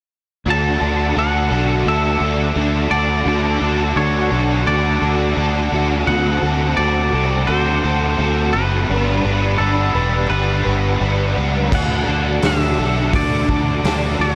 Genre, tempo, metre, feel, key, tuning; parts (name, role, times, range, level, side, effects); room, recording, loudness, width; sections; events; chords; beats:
rock, shoegaze and dream pop; 85 BPM; 4/4; straight; D major; A4 = 440 Hz
twangy electric guitar; melody; 0.5-14.3 s; A4 to A5; -25 LUFS; equal; diffuse ambient delay
biting overdriven guitar; riff; 0.5-14.3 s; D3 to B4; -21 LUFS; equal; ensemble chorus
growling fingered electric bass; bass; 0.5-14.3 s; E1 to D2; -22 LUFS; equal; overdrive
raw garage drum kit; drums; 11.7-14.0 s; crash cymbal, hi-hat, kick drum, snare drum; -23 LUFS; equal
moderate huge ambient reverb, RT60 4.0 s; dreamy mix soaked in reverb; -18 LUFS; mono
0.5-14.3 A section
0.5 D; 6.1 D7; 8.9 G; 11.7 D
| 0.46 1.16 1.86 2.56 | 3.27 3.97 4.67 5.38 | 6.08 6.78 7.49 8.19 | 8.90 9.60 10.31 11.02 | 11.72 12.43 13.14 13.85